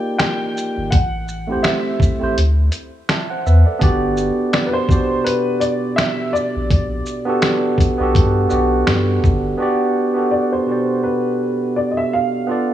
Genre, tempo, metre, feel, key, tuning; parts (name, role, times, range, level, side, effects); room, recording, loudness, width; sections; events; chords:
lo-fi hip hop; 83 BPM; 4/4; swing 57% on 16ths; G major; A4 = 439 Hz
dark upright piano; melody; 0.0-12.7 s; B4 to G5; -23 LUFS; left 1 dB; low-pass filter, analog delay
tine electric piano; accompaniment; 0.0-12.7 s; B2 to A5; -19 LUFS; right 2 dB; low-pass filter
lo-fi sampler-style drum kit; drums; 0.2-9.4 s; finger snaps, hi-hat, kick drum, shaker, snare drum; -18 LUFS; equal; vintage 12-bit sampler grit
warm sub bass; bass; 0.8-9.6 s; G1 to G2; -18 LUFS; equal
light reverb, digital ambience; cassette tape, small room ambience; -15 LUFS; side -11 dB against mid
0.0-9.6 A section; 9.6-12.7 B section
0.0 Ebmaj9; 0.9 Am7; 2.4 Dsus2; 3.8 Gmaj7